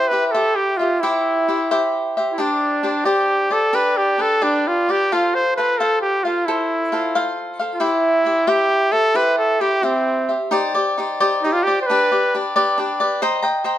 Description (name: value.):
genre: mexican folk.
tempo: 89 BPM (dotted quarters).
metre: 6/8.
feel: rubato.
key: C major, C minor from 10.5 s.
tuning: A4 = 440 Hz.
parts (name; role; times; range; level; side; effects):
clear trumpet; melody; 0.0-12.4 s; C4 to C5; -18 LUFS; equal; none.
cavaquinho; accompaniment; 0.0-13.8 s; D4 to Bb5; -19 LUFS; left 1 dB; none.
room: light reverb.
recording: close, detailed microphones.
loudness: -16 LUFS.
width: side -12 dB against mid.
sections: 0.0-10.5 A section; 10.5-13.8 B section.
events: none.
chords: 0.0 C; 2.4 Gsus4; 3.7 G; 5.1 F; 7.8 C; 10.5 Cmadd9; 11.9 G; 13.2 Cm7.